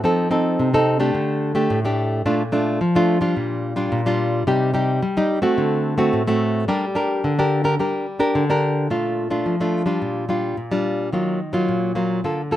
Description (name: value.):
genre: samba.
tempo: 108 BPM.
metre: 4/4.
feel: straight.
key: G minor, Bb major from 8.9 s.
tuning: A4 = 440 Hz.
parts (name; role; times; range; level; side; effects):
nylon-string guitar; solo; 0.0-12.6 s; A2 to Bb4; -18 LUFS; equal; none.
room: light reverb.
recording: none.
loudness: -18 LUFS.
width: side -13 dB against mid.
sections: 0.0-8.9 A section; 8.9-12.6 B section.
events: none.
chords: 0.0 F7; 1.1 Dsus4; 2.3 Bbmaj7; 3.4 Gm7/Bb; 4.5 Cm; 5.6 D7; 6.7 Gm; 8.9 Bbmaj7; 10.0 Gm7/Bb; 11.1 Ebmadd9.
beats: | 0.04 0.60 1.15 1.70 | 2.25 2.81 3.36 3.91 | 4.47 5.02 5.57 6.13 | 6.68 7.24 7.79 8.35 | 8.90 9.46 10.02 10.57 | 11.13 11.69 12.25.